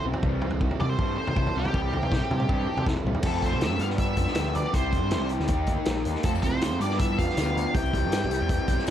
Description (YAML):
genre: indie rock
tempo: 160 BPM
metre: 4/4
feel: straight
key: unclear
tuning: A4 = 440 Hz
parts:
  - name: octave-fuzz lead guitar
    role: melody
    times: 0.0-8.8 s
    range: G4 to G5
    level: -31 LUFS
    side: equal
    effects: distortion, slapback echo
  - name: overdriven electric guitar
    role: riff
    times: 0.0-8.9 s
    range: E3 to A4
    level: -32 LUFS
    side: right 8 dB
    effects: analog chorus, slapback echo
  - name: raw garage guitar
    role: riff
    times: 0.0-8.9 s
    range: F2 to G4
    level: -32 LUFS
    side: left 11 dB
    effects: overdrive
  - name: growling picked electric bass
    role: bass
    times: 0.0-8.9 s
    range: Bb1 to C3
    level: -29 LUFS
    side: equal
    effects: overdrive
  - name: vintage drum kit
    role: drums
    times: 0.1-8.9 s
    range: crash cymbal, hi-hat, kick drum, snare drum, toms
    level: -28 LUFS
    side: equal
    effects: none
  - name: bell-like tine electric piano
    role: second line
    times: 6.3-8.8 s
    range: A3 to G4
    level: -35 LUFS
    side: right 11 dB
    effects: none
  - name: tambourine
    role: percussion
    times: 6.3-8.9 s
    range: none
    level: -49 LUFS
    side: left 22 dB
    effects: none
room: little or no reverb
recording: dark, warm production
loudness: -23 LUFS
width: side -10 dB against mid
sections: 0.0-3.3 A section; 3.3-8.9 B section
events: none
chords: 0.2 C6; 3.3 F; 3.8 G7; 4.8 C; 5.5 Ebmaj7; 6.3 F; 6.8 G7; 7.8 C